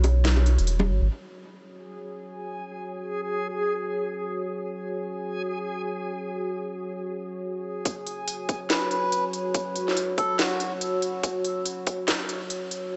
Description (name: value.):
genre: deep dubstep.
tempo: 142 BPM.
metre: 4/4.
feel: swing 59% on 16ths, half-time.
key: unclear.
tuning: A4 = 438 Hz.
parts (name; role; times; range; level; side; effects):
dark analog pad; sustained chords; 0.0-12.9 s; F#4 to C#5; -34 LUFS; equal; chorus.
soft dub sub bass; bass; 0.0-1.1, 7.9-12.9 s; E1 to C#2; -22 LUFS; equal; high-pass filter.
garage drum kit; drums; 0.0-0.8, 7.9-12.8 s; hi-hat, snare drum; -31 LUFS; equal; high-pass filter on hats, high-pass filter on snare, high-pass filter on room.
bongos and congas; percussion; 0.0-0.9 s; none; -32 LUFS; equal; dub echo.
backwards swelling texture; texture; 2.0-7.9 s; G#4; -35 LUFS; equal; built-in reverb.
electronic kick drum; drums; 7.9-12.0 s; none; -32 LUFS; equal; high-pass filter on kick, high-pass filter on room.
melodica; melody; 8.7-10.7 s; F#4 to B4; -33 LUFS; equal; dub echo.
room: light reverb, digital ambience.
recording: nothing above 8.0 kHz.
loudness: -28 LUFS.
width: mono.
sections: 0.0-1.1 A section; 1.1-7.9 B section; 7.9-13.0 C section.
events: break 0.0-1.1; build-up 7.9-13.0.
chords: 0.0 E; 1.1 F#sus2.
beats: 0.25 0.67 | 1.09 1.52 1.94 2.36 | 2.79 3.21 3.63 4.05 | 4.47 4.90 5.32 5.74 | 6.17 6.59 7.01 7.43 | 7.86 8.28 8.70 9.12 | 9.54 9.97 10.39 10.81 | 11.23 11.66 12.08 12.50 | 12.93.